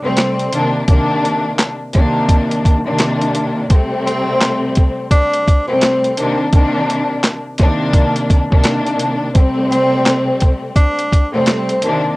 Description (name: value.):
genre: hip hop, boom-bap hip-hop.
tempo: 85 BPM.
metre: 4/4.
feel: swing 61% on 16ths.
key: A minor.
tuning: A4 = 440 Hz.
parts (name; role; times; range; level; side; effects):
dark studio string section; accompaniment; 0.0-12.2 s; C3 to D4; -16 LUFS; left 1 dB; cassette tape.
warm tenor saxophone; melody; 0.1-12.1 s; C4 to D4; -20 LUFS; equal; cassette tape.
boom bap sampler-style drum kit; drums; 0.2-12.0 s; handclaps, hi-hat, kick drum, snare drum; -13 LUFS; equal; cassette tape.
room: moderate booth ambience, RT60 0.2 s.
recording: home recording on cassette.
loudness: -12 LUFS.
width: side -21 dB against mid.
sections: 0.0-12.2 A section.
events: none.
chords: 0.0 Am7; 0.5 Cm9; 3.7 Am7; 6.2 Cm9; 9.3 Am7.